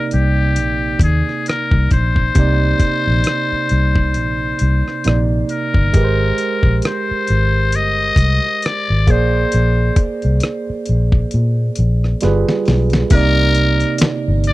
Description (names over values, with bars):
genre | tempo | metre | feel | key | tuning
R&B, neo-soul | 67 BPM | 4/4 | swing 57% on 16ths | C minor | A4 = 440 Hz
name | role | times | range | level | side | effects
trumpet with metal mute | melody | 0.0-14.5 s | G4 to Eb5 | -20 LUFS | left 4 dB | none
barky tine electric piano | accompaniment | 0.0-14.5 s | C3 to D5 | -20 LUFS | right 4 dB | none
vintage muted fingered electric bass | bass | 0.1-14.5 s | G1 to Bb2 | -16 LUFS | equal | none
dusty soul sampler-style drum kit | drums | 0.1-14.5 s | crash cymbal, hi-hat, kick drum, rim click, snare drum | -16 LUFS | equal | none
room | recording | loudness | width
little or no reverb | dry, close 1970s-style studio recording | -13 LUFS | side -18 dB against mid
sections
0.0-13.1 A section; 13.1-14.5 B section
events
drum fill 12.2-13.1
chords
0.0 Cm9; 5.9 Abmaj9; 9.1 Bb9; 12.2 G7b9; 13.1 Cm9